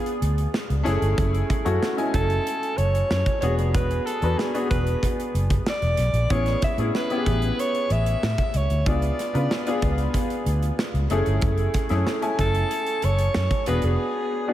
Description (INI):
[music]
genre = polished 1980s jazz-funk pop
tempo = 94 BPM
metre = 4/4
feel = straight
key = unclear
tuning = A4 = 439 Hz
[part]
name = breathy alto saxophone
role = melody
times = 0.0-14.5 s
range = F#4 to E5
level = -28 LUFS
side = right 1 dB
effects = none
[part]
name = bright grand piano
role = accompaniment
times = 0.0-14.5 s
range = G#3 to G#5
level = -27 LUFS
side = left 2 dB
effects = analog chorus
[part]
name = modern studio drum kit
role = drums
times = 0.1-14.0 s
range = hi-hat, kick drum, snare drum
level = -28 LUFS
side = right 1 dB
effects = none
[part]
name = vintage muted fingered electric bass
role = bass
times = 0.2-14.0 s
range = E1 to C#3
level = -23 LUFS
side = equal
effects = none
[sound]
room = moderate plate reverb, RT60 3.7 s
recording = dreamy mix soaked in reverb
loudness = -21 LUFS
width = side -13 dB against mid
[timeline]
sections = 0.0-14.5 A section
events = break 14.0-14.5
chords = 0.0 C#7b9; 0.9 F#m9; 3.4 E7; 6.3 Amaj9; 8.9 C#7b9; 11.1 F#m9; 13.7 E7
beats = 0.54 | 1.18 1.82 2.46 3.10 | 3.74 4.38 5.02 5.66 | 6.30 6.94 7.58 8.22 | 8.87 9.51 10.15 10.79 | 11.43 12.07 12.71 13.35 | 13.99